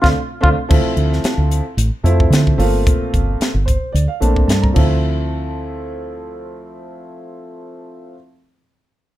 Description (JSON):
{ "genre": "electric jazz fusion", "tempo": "111 BPM", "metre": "4/4", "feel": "swing 53% on 16ths", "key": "D minor", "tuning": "A4 = 441 Hz", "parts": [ { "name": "trumpet with cup mute", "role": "melody", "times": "0.0-0.5 s", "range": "F4", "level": "-19 LUFS", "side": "equal", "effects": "slapback echo, plate reverb" }, { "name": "warm grand piano", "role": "accompaniment", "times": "0.0-8.2 s", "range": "F3 to Bb5", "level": "-22 LUFS", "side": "equal", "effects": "none" }, { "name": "fingered electric bass", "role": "bass", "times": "0.0-8.2 s", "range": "G1 to D3", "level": "-16 LUFS", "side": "equal", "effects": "none" }, { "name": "crisp fusion drum kit", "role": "drums", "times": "0.0-4.9 s", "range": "crash cymbal, hi-hat, kick drum, snare drum", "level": "-18 LUFS", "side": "equal", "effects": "none" } ], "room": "light reverb", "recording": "none", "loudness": "-14 LUFS", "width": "side -14 dB against mid", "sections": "0.7-5.0 A section; 5.0-9.2 B section", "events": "drum fill 0.0-0.7; band accent 0.0-0.7; grand piano fill 3.4-5.0", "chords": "0.0 D7(no3); 0.7 Dm7; 2.6 Gm11; 4.8 Dm7" }